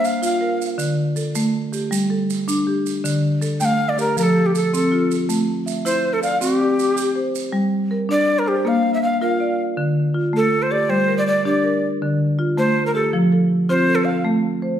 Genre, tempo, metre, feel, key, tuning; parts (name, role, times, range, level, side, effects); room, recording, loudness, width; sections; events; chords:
southern african traditional, mbira-style interlocking cycle; 107 BPM (dotted quarters); 12/8; straight; G dorian; A4 = 442 Hz
breathy Native American-style cedar flute; melody; 0.0-14.2 s; G4 to G5; -20 LUFS; left 1 dB; slapback echo
marimba with medium hard mallets; arpeggios; 0.0-14.8 s; D3 to E5; -19 LUFS; equal
maracas; percussion; 0.0-7.5 s; -31 LUFS; right 8 dB
wet recital hall reverb, RT60 1.3 s; heard from further back in the room; -17 LUFS; side -10 dB against mid
0.0-7.5 A section; 7.5-14.8 B section
0.0 Bb5; 0.8 D5; 1.9 G5; 3.0 D5; 4.2 F; 5.3 A5; 6.4 C5; 7.5 Gm; 8.7 Bb; 9.8 Dm; 10.9 Gm; 12.0 Dm; 13.1 F; 14.3 Am